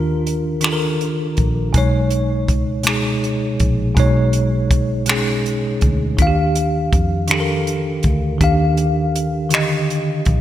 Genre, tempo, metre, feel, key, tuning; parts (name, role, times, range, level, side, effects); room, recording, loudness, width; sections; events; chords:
slow six-eight R&B; 54 BPM (dotted quarters); 6/8; straight; A4 = 440 Hz
bell-like tine electric piano; accompaniment; 0.0-10.4 s; B2 to F5; -18 LUFS; equal; medium stereo tremolo
vintage muted fingered electric bass; bass; 0.0-10.4 s; Bb1 to F2; -22 LUFS; equal
compact cocktail drum kit; drums; 0.3-10.4 s; finger snaps, hi-hat, kick drum; -19 LUFS; equal; gated reverb
light reverb, small room reverb; bright 1980s-style digital production; -15 LUFS; side -12 dB against mid
0.0-10.4 A section
0.0 Ebmaj9; 1.7 B69; 6.2 Ebmaj9